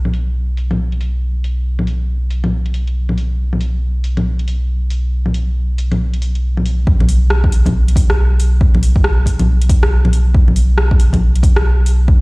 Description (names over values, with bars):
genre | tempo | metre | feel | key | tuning
future garage | 138 BPM | 4/4 | swing 61% on 16ths | unclear | A4 = 440 Hz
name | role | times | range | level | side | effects
soft dub sub bass | bass | 0.0-12.2 s | B1 | -14 LUFS | equal | sidechain pumping
deep house drum kit | drums | 0.1-12.0 s | bongos, hi-hat, rim click | -20 LUFS | left 1 dB | overdrive, low-pass filter on perc, low-pass filter on hats, low-pass filter on snare
electronic kick drum | drums | 6.9-12.2 s | none | -14 LUFS | equal | overdrive
room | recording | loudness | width
digital ambience | played on a big sound system in a bare room, stone room reverb | -12 LUFS | side -25 dB against mid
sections
0.0-6.9 A section; 6.9-12.2 B section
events
none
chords
none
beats
0.35 0.78 1.22 | 1.65 2.08 2.52 2.96 | 3.39 3.83 4.26 4.69 | 5.13 5.56 6.00 6.43 | 6.87 7.30 7.74 8.17 | 8.61 9.04 9.48 9.91 | 10.35 10.78 11.22 11.65 | 12.09